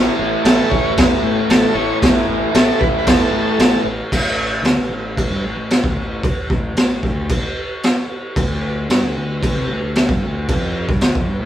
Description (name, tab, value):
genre	garage rock duo or trio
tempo	113 BPM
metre	4/4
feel	straight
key	A mixolydian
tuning	A4 = 440 Hz
part	raw garage guitar	riff	0.0-3.9 s	A2 to A3	-18 LUFS	equal	overdrive
part	fuzz picked electric bass	bass	0.0-11.5 s	A1 to C3	-24 LUFS	left 1 dB	overdrive
part	overdriven combo organ	melody	0.4-3.8 s	A4 to C#5	-21 LUFS	equal	none
part	raw garage drum kit	drums	0.5-11.3 s	crash cymbal, kick drum, snare drum	-16 LUFS	equal	none
room	light reverb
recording	band playing live in one room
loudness	-15 LUFS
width	side -11 dB against mid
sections	0.0-4.1 A section; 4.1-11.5 B section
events	none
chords	0.0 A5; 4.1 N.C.; 8.4 D5